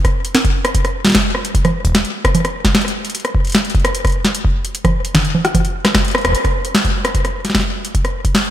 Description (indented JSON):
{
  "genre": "IDM",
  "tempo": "150 BPM",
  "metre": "4/4",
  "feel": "straight",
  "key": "none",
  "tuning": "none",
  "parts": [
    { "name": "booming analog drum machine", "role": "drums", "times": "0.0-8.5 s", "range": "congas, hi-hat, rim click, snare drum", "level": "-16 LUFS", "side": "equal", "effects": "overdrive, ping-pong delay" },
    { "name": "electronic kick drum", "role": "drums", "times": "0.0-8.3 s", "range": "none", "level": "-18 LUFS", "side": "equal", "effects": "overdrive" }
  ],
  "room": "light reverb",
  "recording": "bright 1980s-style digital production",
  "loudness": "-14 LUFS",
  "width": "side -12 dB against mid",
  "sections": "0.0-6.3 A section; 6.3-8.5 B section",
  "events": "drum fill 5.9-6.3; band accent 6.2",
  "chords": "none"
}